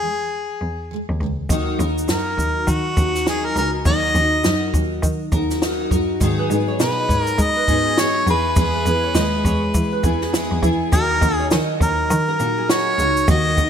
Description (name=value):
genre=acoustic pop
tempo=102 BPM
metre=4/4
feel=swing 60% on 16ths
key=unclear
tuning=A4 = 440 Hz
part: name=warm harmonica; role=melody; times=0.0-13.7 s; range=F#4 to D#5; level=-21 LUFS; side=equal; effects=none
part: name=picked steel-string acoustic guitar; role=accompaniment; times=0.0-13.7 s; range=G#2 to A#4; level=-23 LUFS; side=left 1 dB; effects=double-tracked left and right
part: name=warm cello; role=bass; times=0.0-13.7 s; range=C#2 to G#3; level=-23 LUFS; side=equal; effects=none
part: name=compact cocktail drum kit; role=drums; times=1.5-13.7 s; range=kick drum, shaker, snare drum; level=-22 LUFS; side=equal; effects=none
part: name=nylon-string guitar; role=arpeggios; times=6.4-13.6 s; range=G#4 to D#5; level=-29 LUFS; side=right 6 dB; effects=lush chorus, digital delay
room=moderate lush hall reverb, RT60 1.8 s, studio reverb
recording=bright 1980s-style digital production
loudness=-17 LUFS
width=side -8 dB against mid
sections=0.0-1.5 A section; 1.5-10.9 B section; 10.9-13.7 C section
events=none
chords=0.0 E; 1.5 D#m; 6.2 G#m7; 8.3 E; 10.9 D#m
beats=0.33 0.91 | 1.50 2.09 2.68 3.27 | 3.86 4.45 5.04 5.62 | 6.21 6.80 7.39 7.98 | 8.57 9.16 9.75 10.34 | 10.93 11.52 12.10 12.69 | 13.28